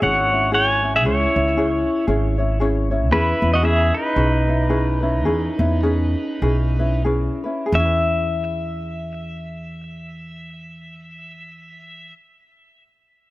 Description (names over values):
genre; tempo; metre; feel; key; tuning
Hawaiian; 87-116 BPM; 4/4; swing 59% on 8ths; E major; A4 = 441 Hz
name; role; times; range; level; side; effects
pedal steel guitar; melody; 0.0-12.1 s; D#4 to G#5; -22 LUFS; equal; tape echo
ukulele; accompaniment; 0.0-12.3 s; C#4 to C#5; -24 LUFS; left 1 dB; none
upright bass; bass; 0.0-12.1 s; G#1 to E2; -22 LUFS; equal; none
room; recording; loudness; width
light reverb; none; -17 LUFS; side -18 dB against mid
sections
0.0-7.7 A section; 7.7-13.2 B section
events
slowing down 3.1-7.7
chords
0.0 C#m; 3.1 E6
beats
0.01 0.53 | 1.04 1.56 2.08 2.60 | 3.12 3.64 4.16 4.70 | 5.26 5.83 6.43 7.06 | 7.73 8.42 9.10 9.79 | 10.48 11.17 11.86